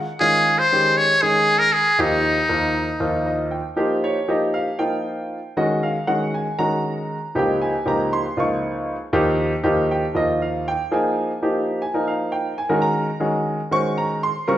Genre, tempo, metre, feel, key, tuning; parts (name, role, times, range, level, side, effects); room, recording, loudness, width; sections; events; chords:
jazz; 235 BPM (eighths); 7/8; straight; A4 = 440 Hz
clear grand piano; accompaniment; 0.0-14.6 s; Db2 to Db6; -20 LUFS; equal
trumpet with metal mute; melody; 0.2-3.5 s; Eb4 to Db5; -16 LUFS; equal
wet large studio reverb, RT60 1.2 s; band playing live in one room; -18 LUFS; side -12 dB against mid
0.0-3.8 A section; 3.8-14.6 B section
grand piano fill 0.0, 3.0-3.8
0.2 Dbadd9; 2.0 Ebadd9; 3.8 Fsus2; 5.6 Ebm7; 7.4 Dbadd9; 9.1 Ebadd9; 10.9 Fm9; 12.7 Ebm7